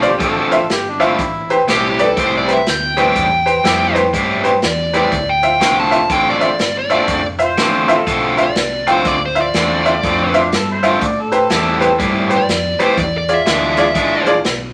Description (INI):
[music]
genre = electric blues shuffle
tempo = 122 BPM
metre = 4/4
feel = swing 63% on 8ths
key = A minor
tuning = A4 = 440 Hz
[part]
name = dark smooth lead guitar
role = melody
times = 0.0-14.3 s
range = G4 to A5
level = -20 LUFS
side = equal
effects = overdrive
[part]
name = tack piano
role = accompaniment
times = 0.0-14.4 s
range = F4 to G5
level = -19 LUFS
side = equal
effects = none
[part]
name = overdriven semi-hollow guitar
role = riff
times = 0.0-14.3 s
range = A2 to F4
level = -20 LUFS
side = equal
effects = none
[part]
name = hollow-body short-scale fingered electric bass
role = bass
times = 0.0-14.7 s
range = F1 to A2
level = -29 LUFS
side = equal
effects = none
[part]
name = swinging big-band drum kit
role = drums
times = 0.0-14.6 s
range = hi-hat, kick drum, snare drum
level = -24 LUFS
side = equal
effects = none
[part]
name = overdriven harmonica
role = second line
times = 0.1-1.6, 7.4-12.1 s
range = C4 to D5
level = -24 LUFS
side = equal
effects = none
[sound]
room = wet studio reverb, RT60 0.6 s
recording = none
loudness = -15 LUFS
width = mono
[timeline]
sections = 0.0-14.7 A section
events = none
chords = 0.0 Dm7; 1.2 Am7; 5.1 Dm7; 11.0 Am7; 13.0 E7b9